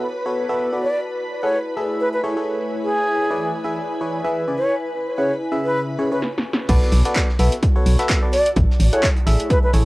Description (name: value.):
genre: piano house.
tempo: 128 BPM.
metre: 4/4.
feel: swing 56% on 16ths.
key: B dorian.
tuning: A4 = 440 Hz.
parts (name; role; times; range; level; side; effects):
string machine, violins; sustained chords; 0.0-6.2 s; B4 to B5; -32 LUFS; equal; ensemble chorus, sidechain pumping, cassette tape.
barking FM electric piano; riff; 0.0-9.8 s; C#3 to F#5; -24 LUFS; equal; chorus, sidechain pumping, cassette tape, analog delay.
ethereal airy pad; texture; 0.0-9.8 s; A3 to A5; -28 LUFS; equal; ensemble chorus, built-in reverb, sidechain pumping, cassette tape.
breathy concert flute; melody; 0.8-9.7 s; G#4 to D5; -21 LUFS; equal; cassette tape, analog delay.
punchy analog drum machine; drums; 6.2-9.8 s; crash cymbal, handclaps, hi-hat, snare drum; -25 LUFS; equal; overdrive, low-pass filter on snare, cassette tape, low-pass filter on hats, low-pass filter on cymbals, low-pass filter on room.
organ-like FM bass; bass; 6.7-9.8 s; A1 to B1; -16 LUFS; equal; sidechain pumping.
cloth-damped thuddy drum kit; drums; 6.7-9.8 s; hi-hat, snare drum; -36 LUFS; equal; none.
electronic kick drum; drums; 6.7-9.6 s; none; -19 LUFS; equal; overdrive, cassette tape.
room: moderate booth ambience, RT60 0.2 s.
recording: home recording on cassette.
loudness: -17 LUFS.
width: side -21 dB against mid.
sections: 0.0-6.7 A section; 6.7-9.8 B section.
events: drum fill 6.2-6.7; stop 6.2-6.7; drop 6.7-9.8.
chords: 0.0 Bm7; 1.1 Amaj7; 2.7 E7; 4.6 C#m7; 6.7 Bm7; 8.6 Amaj7.